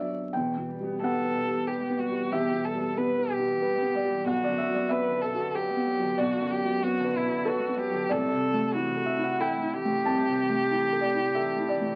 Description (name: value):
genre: neoclassical piano and strings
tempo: 93 BPM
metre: 3/4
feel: rubato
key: E minor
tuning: A4 = 440 Hz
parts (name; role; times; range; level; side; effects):
- muted violin; melody; 0.0-12.0 s; E4 to B4; -31 LUFS; equal; none
- muted cello; second line; 0.0-12.0 s; A2 to B3; -43 LUFS; equal; none
- felt-muted upright piano; accompaniment; 0.0-12.0 s; B1 to A5; -30 LUFS; equal; none
room: wet studio reverb, RT60 0.5 s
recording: very old 78 rpm record, vinyl crackle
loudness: -27 LUFS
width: mono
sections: 0.3-12.0 A section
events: none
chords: 0.3 Em; 4.3 Bm; 8.1 Am/C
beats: | 0.35 1.02 1.68 | 2.33 2.98 3.63 | 4.27 4.91 5.55 | 6.19 6.84 7.47 | 8.11 8.75 9.39 | 10.05 10.70 11.35